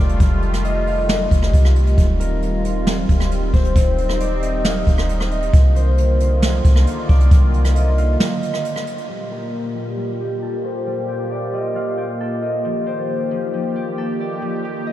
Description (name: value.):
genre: hip hop, atmospheric cloud-rap.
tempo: 135 BPM.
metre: 4/4.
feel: half-time.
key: G minor.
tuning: A4 = 440 Hz.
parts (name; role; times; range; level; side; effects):
concert harp; melody; 0.0-14.9 s; Bb4 to F5; -25 LUFS; left 1 dB; low-pass filter, ping-pong delay.
sweeping resonant pad; sustained chords; 0.0-14.9 s; Bb2 to G4; -24 LUFS; equal; wide subtle chorus, low-pass filter.
soft 808-style bass; bass; 0.0-8.2 s; Eb1 to C2; -17 LUFS; equal; none.
jazz brush drum kit; drums; 0.1-9.1 s; hi-hat, kick drum, rim click, snare drum; -17 LUFS; equal; none.
concert harp; arpeggios; 9.1-14.9 s; F3 to A4; -31 LUFS; left 4 dB; low-pass filter, ping-pong delay.
room: light reverb.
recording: none.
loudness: -16 LUFS.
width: side -13 dB against mid.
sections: 0.0-9.1 A section; 9.1-14.9 B section.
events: break 8.2-9.1; filter sweep 9.1-14.9.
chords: 0.0 F9; 2.0 Eb69; 5.5 Cm11; 9.1 Gm9; 12.6 F9.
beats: | 0.20 0.65 1.09 1.53 | 1.98 2.42 2.87 3.31 | 3.76 4.20 4.65 5.09 | 5.54 5.98 6.42 6.87 | 7.31 7.76 8.20 8.65 | 9.09 9.54 9.98 10.42 | 10.87 11.31 11.76 12.20 | 12.65 13.09 13.54 13.98 | 14.42 14.87.